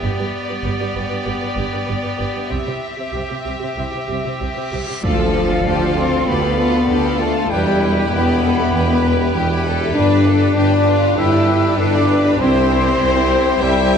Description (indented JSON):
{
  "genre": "cinematic, epic orchestral film score",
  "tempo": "98 BPM",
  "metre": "4/4",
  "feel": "straight",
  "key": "D dorian",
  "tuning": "A4 = 440 Hz",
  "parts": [
    { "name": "warm symphonic violin section", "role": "melody", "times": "0.0-14.0 s", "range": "E4 to E5", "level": "-25 LUFS", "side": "left 4 dB", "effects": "none" },
    { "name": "warm symphonic violin section", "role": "second line", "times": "0.0-14.0 s", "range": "B4 to C6", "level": "-29 LUFS", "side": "left 4 dB", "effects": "none" },
    { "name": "rich symphonic viola section", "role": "accompaniment", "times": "0.0-14.0 s", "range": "D4 to F5", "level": "-27 LUFS", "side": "right 2 dB", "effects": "none" },
    { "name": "pipe organ, clarinet reed", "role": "sustained chords", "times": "0.0-14.0 s", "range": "B3 to G5", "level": "-25 LUFS", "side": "right 1 dB", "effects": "none" },
    { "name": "warm French horn section", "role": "sustained chords", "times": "0.0-14.0 s", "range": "F3 to G4", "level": "-20 LUFS", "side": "left 5 dB", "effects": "none" },
    { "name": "rich symphonic cello section", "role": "bass", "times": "0.0-14.0 s", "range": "G2 to E4", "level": "-25 LUFS", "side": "right 2 dB", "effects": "none" },
    { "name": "rich symphonic double bass section", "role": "bass", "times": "0.0-14.0 s", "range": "G1 to G2", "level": "-22 LUFS", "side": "right 2 dB", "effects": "none" },
    { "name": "reverse cymbal and impact", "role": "sound effects", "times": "4.6-7.5 s", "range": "none", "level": "-28 LUFS", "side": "equal", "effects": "none" },
    { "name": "silver concert flute", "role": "second line", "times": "5.0-14.0 s", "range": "F5 to E6", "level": "-26 LUFS", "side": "left 2 dB", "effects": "none" },
    { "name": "clear trombone section", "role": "sustained chords", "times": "5.0-14.0 s", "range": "F3 to E4", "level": "-25 LUFS", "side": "right 1 dB", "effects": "none" },
    { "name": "warm tuba", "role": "bass", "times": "5.0-14.0 s", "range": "E1 to D2", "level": "-23 LUFS", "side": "right 4 dB", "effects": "none" }
  ],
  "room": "wet concert hall reverb, RT60 2.3 s",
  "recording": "dark, warm production, nothing above 10.5 kHz",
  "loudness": "-15 LUFS",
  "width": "side -7 dB against mid",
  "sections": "0.0-5.0 A section; 5.0-14.0 B section",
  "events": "reverse cymbal 4.6-5.0; impact 5.0-7.5",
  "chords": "0.0 G; 2.5 C; 5.0 Dm; 7.5 Em; 10.0 G; 12.4 C"
}